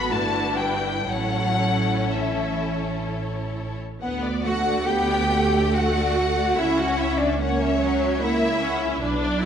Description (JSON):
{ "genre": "classical, slow romantic movement for string orchestra", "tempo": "58-74 BPM", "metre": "3/4", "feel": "rubato", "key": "D major", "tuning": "A4 = 440 Hz", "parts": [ { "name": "warm symphonic violin section", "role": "melody", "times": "0.0-9.5 s", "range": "B4 to A5", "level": "-29 LUFS", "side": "left 5 dB", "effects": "none" }, { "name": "rich symphonic violin section", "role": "second line", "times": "0.0-9.5 s", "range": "F#4 to G5", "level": "-27 LUFS", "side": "left 4 dB", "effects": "none" }, { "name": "clear studio viola section", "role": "accompaniment", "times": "0.0-9.5 s", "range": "F#3 to F#4", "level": "-27 LUFS", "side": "equal", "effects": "none" }, { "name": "rich symphonic cello section", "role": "bass", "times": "0.0-9.5 s", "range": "E3 to G4", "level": "-26 LUFS", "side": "right 4 dB", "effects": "none" }, { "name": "rich symphonic double bass section", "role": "bass", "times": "0.0-9.5 s", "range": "G1 to D2", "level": "-27 LUFS", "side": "right 2 dB", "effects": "none" } ], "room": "moderate scoring stage reverb, RT60 1.6 s", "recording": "dark, warm production", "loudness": "-20 LUFS", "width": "side -8 dB against mid", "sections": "0.0-4.0 A section; 4.0-9.5 B section", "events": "none", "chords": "0.1 Em7/G; 1.1 A; 4.0 D; 6.6 F#5/C#", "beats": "0.11 | 1.09 2.10 3.06 | 4.01 4.88 5.75 | 6.58 7.38 8.19 | 9.01" }